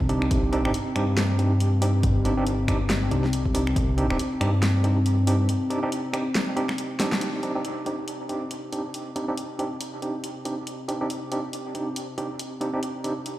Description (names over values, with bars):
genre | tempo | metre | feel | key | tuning
deep dubstep | 139 BPM | 4/4 | swing 58% on 16ths, half-time | C minor | A4 = 440 Hz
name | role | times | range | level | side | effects
dark analog pad | sustained chords | 0.0-13.4 s | C4 | -32 LUFS | left 1 dB | lush chorus
dark detuned saw bass | bass | 0.0-5.5 s | G1 to G2 | -23 LUFS | equal | none
electronic kick drum | drums | 0.0-3.9 s | none | -26 LUFS | equal | none
overdriven tine electric piano | stabs | 0.1-13.1 s | C4 to G4 | -28 LUFS | right 2 dB | fast tremolo, low-pass filter, dub echo
deep house drum kit | drums | 0.1-13.4 s | finger snaps, hi-hat, snare drum | -31 LUFS | equal | none
room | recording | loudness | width
light reverb | played on a big sound system in a bare room, large studio reverb | -23 LUFS | side -15 dB against mid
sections
0.0-7.2 A section; 7.2-13.4 B section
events
break 5.5-7.2; drum fill 7.0; band accent 7.1; filter sweep on analog synth pad 7.2-13.4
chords
0.0 Cmadd9